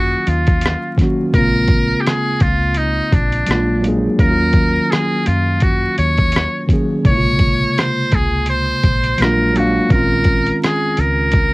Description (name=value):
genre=lo-fi hip hop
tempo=84 BPM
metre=4/4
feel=swing 60% on 16ths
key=Bb minor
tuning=A4 = 440 Hz
part: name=trumpet with metal mute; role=melody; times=0.0-11.5 s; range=D4 to Db5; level=-19 LUFS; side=equal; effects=low-pass filter
part: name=mellow tine electric piano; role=accompaniment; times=0.0-11.5 s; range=C3 to F5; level=-18 LUFS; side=equal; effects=medium stereo tremolo, low-pass filter, cassette tape
part: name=deep dub fingered electric bass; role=bass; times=0.0-11.5 s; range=Bb1 to Gb2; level=-20 LUFS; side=equal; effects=none
part: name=dusty soul sampler-style drum kit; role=drums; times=0.3-11.5 s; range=hi-hat, kick drum, rim click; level=-16 LUFS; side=equal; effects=overdrive, cassette tape
room=light reverb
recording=home recording on cassette, vinyl crackle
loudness=-13 LUFS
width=side -22 dB against mid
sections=0.0-11.5 A section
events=none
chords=0.0 Ebm9; 1.3 Bbm9; 3.5 Bb7b13; 4.2 Ebm9; 7.0 Bbm9; 9.2 Bb7b13; 9.9 Bbm11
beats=0.62 | 1.34 2.05 2.77 3.48 | 4.19 4.91 5.62 6.34 | 7.05 7.76 8.48 9.19 | 9.91 10.62 11.34